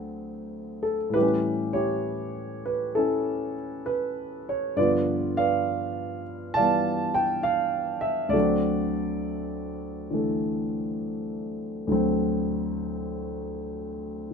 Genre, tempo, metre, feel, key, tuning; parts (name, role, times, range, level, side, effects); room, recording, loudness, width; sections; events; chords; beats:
solo jazz; 67 BPM; 4/4; swing 68% on 8ths, rubato; D mixolydian; A4 = 438 Hz
dark concert grand piano; solo; 0.0-14.3 s; D2 to A5; -25 LUFS; equal
light reverb; minimal, uncompressed stereo recording; -24 LUFS; side -6 dB against mid
0.0-14.3 A section
0.0 D7; 1.2 A7; 4.8 G7; 8.3 D7
0.24 | 1.16 2.06 2.97 3.88 | 4.78 5.67 6.56 7.45 | 8.34 9.23 10.11 11.00 | 11.88 12.78 13.69